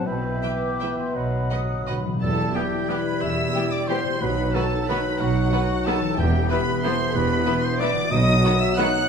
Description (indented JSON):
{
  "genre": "classical, orchestral ballroom waltz",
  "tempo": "157-200 BPM",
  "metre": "3/4",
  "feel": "rubato",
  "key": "E minor",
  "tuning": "A4 = 440 Hz",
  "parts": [
    { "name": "warm studio violin section", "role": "melody", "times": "0.0-9.1 s", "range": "B4 to F#6", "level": "-30 LUFS", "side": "left 1 dB", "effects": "none" },
    { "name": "mellow hollow small flute group", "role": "second line", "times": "0.0-9.1 s", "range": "F#4 to D#6", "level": "-31 LUFS", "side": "left 2 dB", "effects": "none" },
    { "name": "warm clarinet", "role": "second line", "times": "0.0-9.1 s", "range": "B3 to E5", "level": "-33 LUFS", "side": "left 2 dB", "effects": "none" },
    { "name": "warm oboe", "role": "second line", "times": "0.0-9.1 s", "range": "F#4 to G5", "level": "-30 LUFS", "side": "right 1 dB", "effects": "none" },
    { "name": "mellow bassoon", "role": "accompaniment", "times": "0.0-9.1 s", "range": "E3 to G3", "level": "-30 LUFS", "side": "right 3 dB", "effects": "none" },
    { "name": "mellow French horn section", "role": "sustained chords", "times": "0.0-9.1 s", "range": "B3 to A4", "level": "-31 LUFS", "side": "left 4 dB", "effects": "none" },
    { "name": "concert harp", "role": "arpeggios", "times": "0.0-9.1 s", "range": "B2 to E5", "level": "-31 LUFS", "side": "left 7 dB", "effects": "none" },
    { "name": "rich studio cello section", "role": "bass", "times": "0.1-8.4 s", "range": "E2 to B2", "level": "-29 LUFS", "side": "right 2 dB", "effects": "none" },
    { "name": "rich symphonic double bass section", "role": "bass", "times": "0.1-8.4 s", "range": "E1 to B1", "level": "-28 LUFS", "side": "right 3 dB", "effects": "none" },
    { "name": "rich chamber violin section", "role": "second line", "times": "0.4-8.9 s", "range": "E4 to G5", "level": "-32 LUFS", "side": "left 3 dB", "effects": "none" },
    { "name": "rich studio viola section", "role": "accompaniment", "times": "0.4-8.9 s", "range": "D#3 to B4", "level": "-32 LUFS", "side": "right 1 dB", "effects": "none" },
    { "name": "timpani", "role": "percussion", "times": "1.2-8.6 s", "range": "E2 to B2", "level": "-30 LUFS", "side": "equal", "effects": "none" }
  ],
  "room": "wet recital hall reverb, RT60 1.4 s",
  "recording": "minimal, uncompressed stereo recording",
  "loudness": "-20 LUFS",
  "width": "side -6 dB against mid",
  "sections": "0.0-2.2 A section; 2.2-9.1 B section",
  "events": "timpani fill 1.2-2.2",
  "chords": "0.1 Em/B; 2.2 Em; 4.2 B; 6.2 Em; 8.1 B"
}